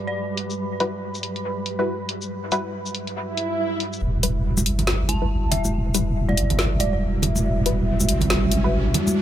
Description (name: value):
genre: deep dubstep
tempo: 140 BPM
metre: 4/4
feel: swing 60% on 16ths, half-time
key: E minor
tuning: A4 = 441 Hz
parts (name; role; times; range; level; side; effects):
- dark analog pad; sustained chords; 0.0-9.2 s; G3 to B5; -28 LUFS; right 1 dB; chorus
- flickering grainy texture; texture; 0.0-4.0 s; G3; -36 LUFS; left 2 dB; built-in reverb
- dark detuned synth bell; melody; 0.1-0.4, 5.1-7.0 s; D5 to A5; -32 LUFS; right 2 dB; chorus, phaser, dub echo
- deep house drum kit; drums; 0.4-9.1 s; hi-hat, shaker, snare drum; -25 LUFS; left 1 dB; low-pass filter on perc, low-pass filter on hats, low-pass filter on snare, low-pass filter on room
- filtered dub chord stab; stabs; 0.8-8.8 s; G3 to B4; -29 LUFS; left 2 dB; chorus, dub echo
- swell and riser; sound effects; 3.3-9.2 s; none; -31 LUFS; right 2 dB; none
- deep soft wobble bass; bass; 4.0-8.9 s; E1 to G1; -22 LUFS; equal; chorus, tube saturation
- congas; percussion; 4.6-9.1 s; none; -27 LUFS; right 2 dB; none
room: little or no reverb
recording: none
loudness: -20 LUFS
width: side -11 dB against mid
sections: 0.0-4.0 A section; 4.0-9.2 B section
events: filter sweep on synth stab 0.0-4.0; filter sweep on analog synth pad 0.0-4.0; swell 3.3-4.0; build-up 4.0-9.2; riser 4.0-9.2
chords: 0.0 Emadd9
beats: 0.16 | 0.59 1.02 1.45 1.88 | 2.30 2.73 3.16 3.59 | 4.02 4.45 4.88 5.30 | 5.73 6.16 6.59 7.02 | 7.45 7.88 8.30 8.73 | 9.16